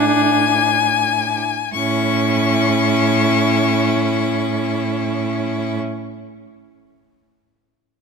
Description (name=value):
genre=classical, slow romantic movement for string quartet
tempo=34 BPM (dotted quarters)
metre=6/8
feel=rubato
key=A major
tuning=A4 = 440 Hz
part: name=rich violin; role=melody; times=0.0-5.8 s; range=G#5 to C#6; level=-20 LUFS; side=left 11 dB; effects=none
part: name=bright violin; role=second line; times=0.0-5.8 s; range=E4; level=-23 LUFS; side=left 7 dB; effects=none
part: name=warm viola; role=accompaniment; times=0.0-5.8 s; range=C#4 to D4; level=-21 LUFS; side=right 4 dB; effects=none
part: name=rich cello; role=bass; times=0.0-5.8 s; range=A2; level=-22 LUFS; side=right 6 dB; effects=none
room=moderate concert hall reverb, RT60 2.2 s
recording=close, detailed microphones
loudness=-15 LUFS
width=side -5 dB against mid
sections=0.0-1.8 A section; 1.8-5.3 B section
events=slowing down 0.0-1.8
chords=0.0 E7/A; 1.8 A